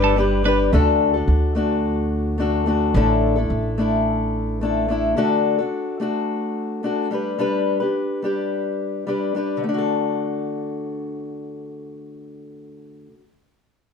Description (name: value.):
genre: acoustic pop.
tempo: 108 BPM.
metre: 4/4.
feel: straight.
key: D major.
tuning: A4 = 441 Hz.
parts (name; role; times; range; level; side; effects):
fingerpicked acoustic archtop guitar; accompaniment; 0.0-13.3 s; A2 to B4; -20 LUFS; left 2 dB; none.
bright small flute group; sustained chords; 0.0-0.7 s; B4 to D6; -35 LUFS; right 4 dB; none.
twelve-string electric guitar; arpeggios; 0.0-0.6 s; A4 to B4; -25 LUFS; right 7 dB; none.
upright bass; bass; 0.0-5.1 s; G1 to D2; -22 LUFS; equal; none.
room: light reverb.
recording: dark, warm production.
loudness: -19 LUFS.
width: side -6 dB against mid.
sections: 0.7-9.6 A section; 9.6-11.9 B section.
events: none.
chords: 0.0 G; 0.7 D; 2.9 Asus4; 5.2 D; 7.1 G; 9.6 D.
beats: 0.18 | 0.73 1.28 1.84 2.39 | 2.95 3.50 4.06 4.62 | 5.17 5.73 6.29 6.84 | 7.40 7.96 8.52 9.07 | 9.63 10.19 10.74 11.30.